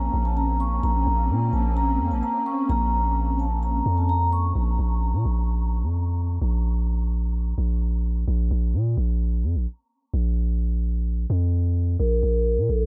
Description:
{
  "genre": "hip hop, trap",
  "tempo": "129 BPM",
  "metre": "4/4",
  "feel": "half-time",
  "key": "Bb harmonic minor",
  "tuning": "A4 = 439 Hz",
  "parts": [
    { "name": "vibraphone with soft mallets", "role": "melody", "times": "0.0-4.5, 12.0-12.9 s", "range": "A4 to Db6", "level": "-30 LUFS", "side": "equal", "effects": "low-pass filter, diffuse ambient delay" },
    { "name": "hollow soft pad", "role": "sustained chords", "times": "0.0-4.5 s", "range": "Bb3 to Db4", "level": "-33 LUFS", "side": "equal", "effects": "ensemble chorus" },
    { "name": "long sustained 808-style bass", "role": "bass", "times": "0.0-12.9 s", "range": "Bb1 to Bb2", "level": "-24 LUFS", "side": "equal", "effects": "none" }
  ],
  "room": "light reverb, studio ambience",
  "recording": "none",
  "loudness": "-24 LUFS",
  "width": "mono",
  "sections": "0.0-4.6 A section; 4.6-12.9 B section",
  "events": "filter sweep on vibraphone 4.6-12.9",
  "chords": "0.0 Bbmadd9; 4.6 Bb5",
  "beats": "0.37 | 0.83 1.30 1.76 2.23 | 2.69 3.16 3.62 4.09 | 4.55 5.02 5.49 5.95 | 6.42 6.88 7.35 7.81 | 8.28 8.74 9.21 9.67 | 10.14 10.60 11.07 11.53 | 12.00 12.46"
}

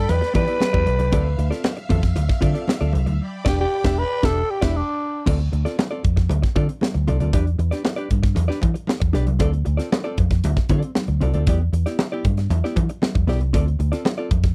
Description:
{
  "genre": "funk",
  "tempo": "116 BPM",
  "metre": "4/4",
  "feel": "straight",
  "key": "D dorian",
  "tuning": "A4 = 441 Hz",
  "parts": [
    { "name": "growling tenor saxophone", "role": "melody", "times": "0.0-5.3 s", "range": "D4 to B4", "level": "-25 LUFS", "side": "equal", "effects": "none" },
    { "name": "string machine, violins", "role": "sustained chords", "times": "0.0-5.2 s", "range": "D5 to B5", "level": "-38 LUFS", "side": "equal", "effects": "ensemble chorus" },
    { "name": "vintage muted fingered electric bass", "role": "bass", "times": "0.0-14.5 s", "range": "E1 to E3", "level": "-23 LUFS", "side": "equal", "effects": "none" },
    { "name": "hollow-body jazz guitar", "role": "accompaniment", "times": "0.1-14.5 s", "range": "B3 to E5", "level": "-29 LUFS", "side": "equal", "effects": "none" },
    { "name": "crisp fusion drum kit", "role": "drums", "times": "0.1-14.5 s", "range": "crash cymbal, hi-hat, kick drum, snare drum", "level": "-24 LUFS", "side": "equal", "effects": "none" },
    { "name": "congas", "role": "percussion", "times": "0.1-14.4 s", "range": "none", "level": "-32 LUFS", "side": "equal", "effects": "none" }
  ],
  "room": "little or no reverb",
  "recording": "dry, close 1970s-style studio recording",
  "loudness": "-21 LUFS",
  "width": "mono",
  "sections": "0.0-5.3 A section; 5.3-14.5 B section",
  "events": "tenor saxophone solo 0.0-5.3; band accent 3.2-5.3",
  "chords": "0.0 Em7; 1.1 Dm7; 3.2 Em7; 5.3 Dm7; 7.3 Em7; 9.4 Dm7; 11.5 Em7; 13.5 Dm7",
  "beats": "0.09 0.61 | 1.13 1.64 2.16 2.68 | 3.20 3.71 4.23 4.75 | 5.27 5.78 6.30 6.82 | 7.33 7.85 8.37 8.88 | 9.40 9.92 10.44 10.95 | 11.47 11.98 12.50 13.02 | 13.53 14.05"
}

